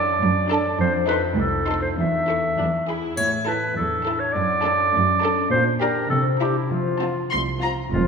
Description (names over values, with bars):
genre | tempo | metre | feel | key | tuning
cinematic, playful, whimsical film cue | 102 BPM | 2/4 | straight | unclear | A4 = 443 Hz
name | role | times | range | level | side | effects
rich studio violin section | melody | 0.0-7.7 s | A5 to C#6 | -32 LUFS | left 2 dB | none
clear clarinet | second line | 0.0-8.1 s | E4 to E5 | -22 LUFS | right 1 dB | none
rich studio violin section | second line | 0.0-7.9 s | E4 to A4 | -30 LUFS | left 1 dB | none
rich symphonic viola section | accompaniment | 0.0-7.8 s | C4 to E4 | -33 LUFS | right 2 dB | none
concert harp | arpeggios | 0.0-8.1 s | E2 to A4 | -27 LUFS | left 5 dB | none
rich studio cello section | bass | 0.0-8.1 s | C2 to C3 | -26 LUFS | right 3 dB | none
triangle | percussion | 3.2-4.3 s | none | -36 LUFS | left 3 dB | none
clear studio double bass section | bass | 7.9-8.1 s | F1 | -21 LUFS | right 3 dB | none
room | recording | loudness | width
wet scoring stage reverb, RT60 1.9 s | minimal, uncompressed stereo recording | -19 LUFS | side -5 dB against mid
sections
0.0-7.9 A section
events
none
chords
0.0 D/F#; 0.8 F7; 2.0 A/E; 2.6 E; 3.2 A5; 4.4 D/F#; 5.5 Gm/Bb; 6.1 C9; 6.7 F5